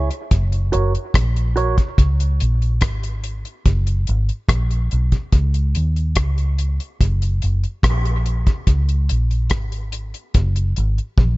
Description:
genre	dub reggae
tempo	72 BPM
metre	4/4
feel	straight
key	unclear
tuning	A4 = 440 Hz
part	clean electric guitar	accompaniment	0.0-1.8 s	F#4 to C#5	-25 LUFS	right 5 dB	high-pass filter, low-pass filter, dub echo
part	vintage muted fingered electric bass	bass	0.0-11.4 s	F#1 to D#2	-18 LUFS	equal	none
part	deep reggae drum kit	drums	0.1-11.4 s	hi-hat, kick drum, rim click, toms	-18 LUFS	equal	none
room	small room ambience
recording	nothing above 7.7 kHz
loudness	-17 LUFS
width	side -21 dB against mid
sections	0.0-11.4 A section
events	drum fill 11.2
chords	0.3 F#; 2.0 C#5; 3.7 F#; 5.3 C#sus2; 7.0 F#; 8.7 C#5; 10.3 F#

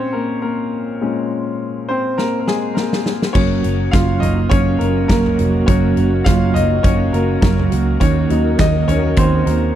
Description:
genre	piano-driven pop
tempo	103 BPM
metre	4/4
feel	swing 56% on 16ths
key	unclear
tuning	A4 = 440 Hz
part	clear concert grand piano	accompaniment	0.0-9.8 s	Bb2 to F5	-19 LUFS	left 3 dB	none
part	huge arena drum kit	drums	2.2-9.6 s	crash cymbal, hi-hat, kick drum, snare drum, toms	-19 LUFS	equal	none
part	fingerpicked steel-string acoustic guitar	riff	3.3-9.8 s	Gb2 to Gb4	-19 LUFS	right 6 dB	none
part	dark studio string section	sustained chords	3.4-9.8 s	Eb3 to Bb4	-25 LUFS	right 3 dB	none
part	vintage muted picked electric bass	bass	3.4-9.7 s	F1 to Eb2	-19 LUFS	equal	none
part	group handclap	percussion	8.6-8.7 s	none	-34 LUFS	right 10 dB	none
room	studio reverb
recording	dry, close 1970s-style studio recording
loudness	-14 LUFS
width	side -11 dB against mid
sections	0.0-3.4 A section; 3.4-9.8 B section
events	grand piano solo 0.0-3.4, 3.4-9.8; drum fill 2.2-3.4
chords	0.0 Bbm7; 3.4 Gb; 8.0 Ebm

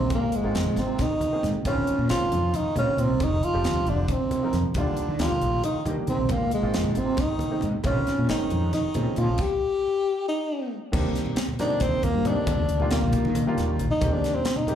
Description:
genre	electric jazz fusion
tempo	272 BPM (eighths)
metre	7/8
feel	straight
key	Eb major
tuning	A4 = 440 Hz
part	breathy tenor saxophone	melody	0.0-14.8 s	Ab3 to G4	-26 LUFS	equal	plate reverb, slapback echo, analog delay
part	trombone with metal mute	second line	0.0-9.4 s	Ab2 to F3	-36 LUFS	right 4 dB	plate reverb, slapback echo
part	clear concert grand piano	accompaniment	0.0-14.8 s	Eb3 to Bb4	-31 LUFS	right 1 dB	plate reverb, slapback echo
part	mellow fretless electric bass	bass	0.0-14.2 s	F1 to Eb3	-27 LUFS	equal	analog chorus
part	crisp fusion drum kit	drums	0.1-14.8 s	crash cymbal, hi-hat, kick drum, snare drum	-30 LUFS	equal	none
part	congas	percussion	0.1-14.8 s	none	-32 LUFS	right 1 dB	slapback echo
room	light reverb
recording	live gig heard through the venue's PA, club reverb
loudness	-22 LUFS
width	side -9 dB against mid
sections	0.0-10.9 A section; 10.9-14.8 B section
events	stop 9.4-10.9; tenor saxophone solo 10.9-14.8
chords	0.1 Ab69; 1.7 Bbm11; 3.2 Fm9; 4.8 Ebmaj9; 6.3 Ab69; 7.8 Bbm11; 9.4 N.C.; 10.9 Cm9/Eb; 12.5 Ebmaj9; 14.0 Abmaj9/Eb

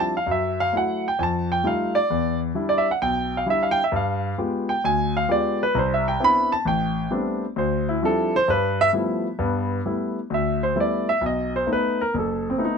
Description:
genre	solo jazz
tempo	132 BPM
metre	4/4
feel	swing 68% on 8ths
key	G major from 9.4 s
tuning	A4 = 440 Hz
part	warm grand piano	solo	0.0-12.8 s	F#1 to B5	-20 LUFS	equal	none
room	light reverb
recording	close, detailed microphones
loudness	-20 LUFS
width	side -6 dB against mid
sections	0.0-9.4 A section; 9.4-12.8 A section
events	grand piano solo 0.0-9.4, 9.4-12.8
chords	0.3 F#m7; 1.2 F9; 2.1 Em7; 3.9 G7b9; 5.7 Cmaj9; 6.7 Am11; 7.6 Dm11; 8.5 G13; 9.4 G69; 11.2 B7

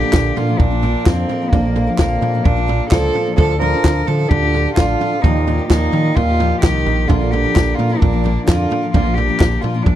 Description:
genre	indie folk with a building arrangement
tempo	130 BPM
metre	4/4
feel	straight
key	unclear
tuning	A4 = 440 Hz
part	rich cello	melody	0.0-10.0 s	Bb3 to Bb4	-20 LUFS	left 2 dB	none
part	clear French horn	second line	0.0-8.9 s	F2 to F3	-23 LUFS	right 7 dB	none
part	felt-muted upright piano	accompaniment	0.0-10.0 s	Bb1 to Eb5	-28 LUFS	right 8 dB	none
part	picked steel-string acoustic guitar	accompaniment	0.0-10.0 s	Bb2 to Bb4	-24 LUFS	left 6 dB	none
part	mellow brass ensemble	sustained chords	0.0-8.9 s	Bb3 to Bb5	-30 LUFS	left 2 dB	none
part	deep dub fingered electric bass	bass	0.0-10.0 s	A1 to Eb3	-19 LUFS	equal	none
part	compact cocktail drum kit	drums	0.1-10.0 s	kick drum, snare drum, toms	-18 LUFS	equal	none
part	group handclap	percussion	0.1-9.5 s	none	-28 LUFS	right 3 dB	none
room	small room ambience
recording	dry, close 1970s-style studio recording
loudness	-13 LUFS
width	side -12 dB against mid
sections	0.0-10.0 A section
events	none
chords	0.0 Bb; 3.4 Dm; 5.2 Ebadd9; 7.1 Bb

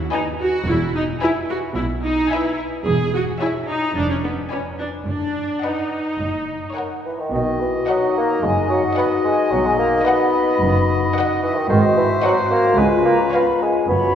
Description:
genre	cinematic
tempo	109 BPM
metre	4/4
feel	straight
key	B major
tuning	A4 = 440 Hz
part	rich studio violin section	melody	0.1-13.7 s	E#5 to G#5	-28 LUFS	left 2 dB	none
part	clear studio violin section	second line	0.1-13.7 s	A#4 to E5	-31 LUFS	left 2 dB	none
part	rich studio viola section	accompaniment	0.1-13.8 s	Cb4 to B#4	-23 LUFS	right 1 dB	none
part	clear studio double bass section	bass	0.7-14.2 s	E1 to C#2	-27 LUFS	right 1 dB	none
part	rich studio cello section	bass	0.7-14.2 s	C#2 to B2	-27 LUFS	right 2 dB	none
part	mellow flute section	second line	7.1-14.2 s	D#5 to B5	-25 LUFS	left 1 dB	none
part	mellow bassoon	accompaniment	7.1-14.2 s	D#3 to B3	-19 LUFS	equal	none
part	bright oboe	second line	7.3-14.2 s	B4 to D#5	-26 LUFS	equal	none
part	dark clarinet	second line	7.3-14.2 s	E#4 to F#4	-28 LUFS	left 1 dB	none
part	mellow French horn section	sustained chords	7.3-14.2 s	B#3 to F#4	-22 LUFS	left 4 dB	none
room	wet concert hall reverb, RT60 2.5 s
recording	recorded in a church or concert hall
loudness	-17 LUFS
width	side -9 dB against mid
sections	0.0-7.3 A section; 7.3-14.2 B section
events	none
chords	0.0 G#m; 0.7 E; 2.9 C#m/E; 4.0 Fdim7; 5.1 B/F#; 6.2 F#; 7.3 B; 11.7 G#7; 12.8 C#7

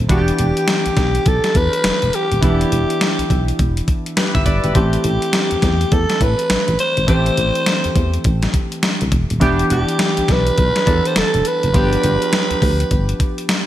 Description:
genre	R&B, new jack swing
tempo	103 BPM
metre	4/4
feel	swing 62% on 16ths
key	A minor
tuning	A4 = 440 Hz
part	warm analog keys	accompaniment	0.0-13.7 s	E3 to E5	-22 LUFS	equal	chorus
part	solid FM bass	bass	0.0-13.1 s	D#1 to A2	-19 LUFS	equal	none
part	growling alto saxophone	melody	0.1-13.5 s	G4 to C5	-19 LUFS	equal	none
part	crisp 8-bit digital drum machine	drums	0.1-13.7 s	hi-hat, kick drum, snare drum	-18 LUFS	equal	overdrive, gated reverb
room	moderate lush hall reverb, RT60 1.7 s, digital ambience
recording	bright 1980s-style digital production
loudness	-14 LUFS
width	side -13 dB against mid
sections	0.0-13.7 A section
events	none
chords	0.1 Em7; 4.8 Am7; 9.4 Em7; 11.7 G7

